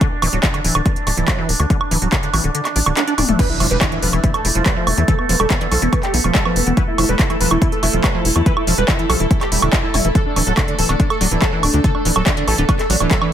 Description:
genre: psychedelic trance.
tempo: 142 BPM.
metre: 4/4.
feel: straight.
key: E phrygian.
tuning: A4 = 439 Hz.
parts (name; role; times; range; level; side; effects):
overtone-sweeping drone; sustained chords; 0.0-13.3 s; A3 to A4; -25 LUFS; right 2 dB; chorus, built-in reverb, sidechain pumping.
liquid acid bass; riff; 0.0-13.3 s; D3 to E4; -23 LUFS; moving between left 4 dB and right 5 dB; chorus, auto-pan, sidechain pumping, dub echo.
electronic kick drum; drums; 0.0-13.2 s; none; -18 LUFS; equal; overdrive.
techno drum kit; drums; 0.0-13.3 s; crash cymbal, handclaps, hi-hat, toms, woodblock; -20 LUFS; right 1 dB; overdrive.
tight sequencer bass; bass; 0.2-13.1 s; D1 to E2; -19 LUFS; equal; none.
resonant blip pluck; second line; 0.8-12.8 s; E3 to D4; -34 LUFS; left 3 dB; none.
wide unison lead; melody; 3.4-13.3 s; B3 to B4; -22 LUFS; right 1 dB; phaser, sidechain pumping, dub echo.
impact; sound effects; 3.5-5.1 s; none; -29 LUFS; equal; none.
room: light reverb, digital ambience.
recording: none.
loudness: -14 LUFS.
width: side -10 dB against mid.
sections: 0.0-3.4 A section; 3.4-13.3 B section.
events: kick drops out 2.5-3.4; drum fill 3.2; drop 3.4-13.3; impact 3.4-5.1.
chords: 0.0 D5; 3.4 E5; 10.2 D5.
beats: | 0.01 0.43 0.86 1.28 | 1.70 2.12 2.55 2.97 | 3.39 3.81 4.24 4.66 | 5.08 5.50 5.93 6.35 | 6.77 7.19 7.62 8.04 | 8.46 8.88 9.31 9.73 | 10.15 10.57 11.00 11.42 | 11.84 12.27 12.69 13.11.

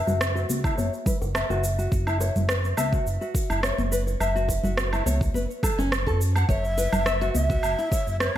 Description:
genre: organic downtempo.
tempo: 105 BPM.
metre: 4/4.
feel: straight.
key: F# minor pentatonic.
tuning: A4 = 438 Hz.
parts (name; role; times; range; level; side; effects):
nylon-string guitar; arpeggios; 0.0-8.3 s; C#4 to F#5; -29 LUFS; left 2 dB; low-pass filter, digital delay.
smooth synth bass; bass; 0.0-8.4 s; F#1 to F#2; -26 LUFS; equal; none.
electronic shaker, rim click and woodblock; drums; 0.1-8.3 s; none; -29 LUFS; right 2 dB; overdrive.
congas and bongos; percussion; 0.1-8.4 s; none; -32 LUFS; left 1 dB; none.
electronic kick drum; drums; 0.6-8.0 s; none; -26 LUFS; equal; none.
breathy bright low ney; melody; 6.5-8.4 s; C#5 to E5; -28 LUFS; equal; digital delay.
room: light reverb.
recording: none.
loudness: -22 LUFS.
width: side -12 dB against mid.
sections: 0.0-8.4 A section.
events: filter sweep on nylon-string guitar 0.0-8.4.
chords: 0.0 F#7(no3); 6.5 A6 (rootless).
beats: 0.20 0.78 1.35 | 1.92 2.49 3.06 3.63 | 4.21 4.78 5.35 5.92 | 6.49 7.06 7.63 8.21.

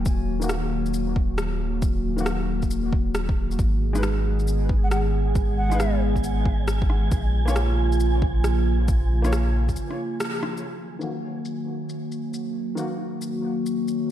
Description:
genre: future garage.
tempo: 136 BPM.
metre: 4/4.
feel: swing 64% on 16ths.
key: Eb minor.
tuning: A4 = 438 Hz.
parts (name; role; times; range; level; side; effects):
warbly tape-like pad; sustained chords; 0.0-14.1 s; Db3 to Ab4; -27 LUFS; equal; chorus, built-in reverb, sidechain pumping.
soft dub sub bass; bass; 0.0-9.8 s; Eb1 to Bb1; -23 LUFS; equal; none.
electronic kick drum; drums; 0.1-9.7 s; none; -24 LUFS; equal; overdrive, small room ambience.
electronic shaker and rim click; drums; 0.1-13.9 s; none; -32 LUFS; equal; overdrive, low-pass filter on snare, small room ambience, low-pass filter on perc.
warm upright piano; accompaniment; 0.4-12.8 s; Eb3 to Db5; -34 LUFS; left 2 dB; sidechain pumping, low-pass filter, diffuse ambient delay.
wind-like tuned noise texture; texture; 4.7-10.7 s; Ab5; -37 LUFS; right 4 dB; built-in reverb, ensemble chorus.
wooden flute; melody; 4.8-6.0 s; Gb5; -35 LUFS; right 1 dB; diffuse ambient delay.
room: light reverb.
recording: none.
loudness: -21 LUFS.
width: side -11 dB against mid.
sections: 0.0-10.6 A section; 10.6-14.1 B section.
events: filter sweep on upright piano 0.0-10.6; break 9.8-10.6; band accent 10.2; filter sweep on drum 10.6-14.1.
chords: 0.0 Ebm; 3.6 Abm; 7.1 Bbm; 10.6 Ebm.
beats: | 0.06 0.50 0.94 1.38 | 1.82 2.26 2.71 3.15 | 3.59 4.03 4.47 4.91 | 5.35 5.79 6.23 6.67 | 7.12 7.56 8.00 8.44 | 8.88 9.32 9.76 10.21 | 10.65 11.09 11.53 11.97 | 12.41 12.85 13.29 13.73.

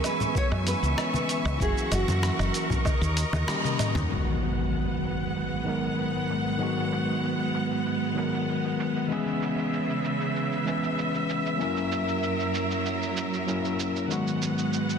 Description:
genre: sunset chillout.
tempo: 96 BPM.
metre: 4/4.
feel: straight.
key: G# minor.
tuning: A4 = 440 Hz.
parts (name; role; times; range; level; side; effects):
nylon-string guitar; melody; 0.0-3.1 s; F#4 to C#5; -32 LUFS; right 1 dB; tape echo.
overdriven tine electric piano; accompaniment; 0.0-15.0 s; D#3 to B4; -29 LUFS; moving between left 5 dB and right 4 dB; auto-pan, ping-pong delay.
clear studio string section; sustained chords; 0.0-15.0 s; F#2 to C#6; -30 LUFS; right 1 dB; none.
dusty soul sampler-style drum kit; drums; 0.0-15.0 s; cabasa, hi-hat, rim click, toms, woodblock; -34 LUFS; right 1 dB; low-pass filter on perc, low-pass filter on hats, soft clipping on snare, low-pass filter on snare, low-pass filter on toms.
congas; percussion; 0.2-4.1 s; none; -34 LUFS; left 2 dB; none.
electronic kick drum; drums; 0.4-3.0 s; none; -27 LUFS; equal; none.
woody fretless electric bass; bass; 0.5-4.1 s; F#1 to F#2; -27 LUFS; equal; none.
impact; sound effects; 4.1-6.6 s; none; -32 LUFS; left 1 dB; none.
room: wet lush hall reverb, RT60 2.3 s.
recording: dense, heavily limited modern master.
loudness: -25 LUFS.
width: side -7 dB against mid.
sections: 0.0-4.1 A section; 4.1-15.0 B section.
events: kick drops out 3.5-4.1; band accent 3.5-3.8; drum fill 3.6-4.1; impact 4.1-6.6; filter sweep on drum 4.1-15.0.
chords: 0.0 C#m7; 1.6 F#7; 2.9 D#7; 4.1 G#m7; 9.1 C#m7; 11.6 F#7; 14.1 G#m7.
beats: 0.35 0.98 | 1.60 2.23 2.85 3.48 | 4.10 4.73 5.35 5.98 | 6.60 7.23 7.85 8.48 | 9.10 9.73 10.35 10.98 | 11.60 12.23 12.85 13.48 | 14.10 14.73.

